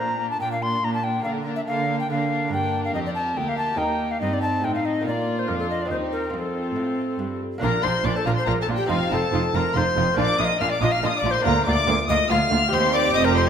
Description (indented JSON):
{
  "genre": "classical, baroque-style concerto movement with solo episodes",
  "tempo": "141 BPM",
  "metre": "3/4",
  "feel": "straight",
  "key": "Bb major",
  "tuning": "A4 = 437 Hz",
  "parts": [
    { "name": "alto recorder", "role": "melody", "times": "0.0-13.5 s", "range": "F4 to C6", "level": "-25 LUFS", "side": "left 2 dB", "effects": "none" },
    { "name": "rich chamber violin section", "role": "melody", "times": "0.0-13.5 s", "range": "D4 to F6", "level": "-28 LUFS", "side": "left 4 dB", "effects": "none" },
    { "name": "warm chamber violin section", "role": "second line", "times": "0.0-13.5 s", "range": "C4 to G4", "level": "-31 LUFS", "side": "left 2 dB", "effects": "none" },
    { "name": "dark chamber viola section", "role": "accompaniment", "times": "0.0-13.5 s", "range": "Bb3 to Eb4", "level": "-29 LUFS", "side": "right 2 dB", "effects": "none" },
    { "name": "lute", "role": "accompaniment", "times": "0.0-13.5 s", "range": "D2 to Bb4", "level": "-32 LUFS", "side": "right 2 dB", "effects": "none" },
    { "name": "rich chamber cello section", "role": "bass", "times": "0.0-13.5 s", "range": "D2 to D3", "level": "-28 LUFS", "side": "right 3 dB", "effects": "none" },
    { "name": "rich chamber double bass section", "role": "bass", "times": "7.6-13.5 s", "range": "F1 to Eb2", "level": "-27 LUFS", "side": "right 3 dB", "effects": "none" }
  ],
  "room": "wet recital hall reverb, RT60 1.6 s",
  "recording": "minimal, uncompressed stereo recording",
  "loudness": "-20 LUFS",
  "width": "side -8 dB against mid",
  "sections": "0.0-7.6 A section; 7.6-13.5 B section",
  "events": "none",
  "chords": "0.0 Bb; 1.3 Bb/D; 2.5 Gm; 3.8 Eb; 5.1 Bb; 5.9 Cm/Eb; 6.3 F; 7.6 Bb; 8.9 F7; 10.2 Bb; 11.5 Bb/D; 12.7 Cm"
}